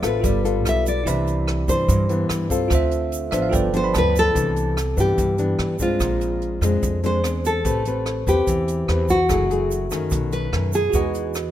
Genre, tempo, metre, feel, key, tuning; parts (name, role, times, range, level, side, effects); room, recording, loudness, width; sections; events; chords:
bossa nova; 146 BPM; 4/4; straight; C major; A4 = 440 Hz
bell-like tine electric piano; accompaniment; 0.0-4.4, 10.9-11.5 s; E4 to B5; -26 LUFS; right 6 dB
nylon-string guitar; accompaniment; 0.0-11.5 s; G2 to B4; -24 LUFS; left 3 dB
upright bass; bass; 0.0-11.5 s; F#1 to G2; -24 LUFS; right 1 dB
jazz brush drum kit; drums; 0.0-11.4 s; hi-hat, kick drum, rim click; -28 LUFS; right 1 dB
egg shaker; percussion; 0.0-11.5 s; -36 LUFS; right 7 dB
nylon-string guitar; melody; 0.1-11.5 s; F4 to E5; -23 LUFS; left 1 dB
little or no reverb; minimal, uncompressed stereo recording; -18 LUFS; side -12 dB against mid
0.0-4.4 A section; 4.4-11.5 B section
nylon-string guitar solo 0.0-4.4; tine electric piano fill 3.1-4.4
0.2 G9; 1.1 Cmaj9; 2.7 Dm7; 3.5 G7; 4.4 Cmaj9; 6.0 Bb9; 7.7 Am9; 9.3 F#m9; 10.1 B9; 10.9 Emaj9